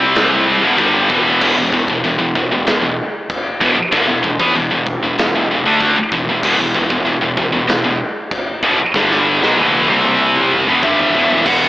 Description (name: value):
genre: heavy metal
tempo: 96 BPM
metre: 4/4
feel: straight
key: E minor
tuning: A4 = 442 Hz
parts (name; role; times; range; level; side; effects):
- scooped high-gain guitar; riff; 0.0-11.7 s; E2 to D4; -13 LUFS; equal; distortion
- fuzz picked electric bass; bass; 0.0-11.7 s; E1 to E2; -22 LUFS; equal; overdrive
- big rock drum kit; drums; 0.2-11.6 s; china cymbal, crash cymbal, kick drum, snare drum, toms; -20 LUFS; equal; soft clipping on kick
- smooth overdriven lead guitar; melody; 10.8-11.7 s; E5 to F#5; -17 LUFS; right 1 dB; none
room: little or no reverb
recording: blown-out, overdriven recording, overdrive, AM radio sound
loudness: -12 LUFS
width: side -16 dB against mid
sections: 0.0-11.4 A section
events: drum fill 8.9-11.4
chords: 0.0 C5; 0.6 Em; 9.9 C5; 10.7 Em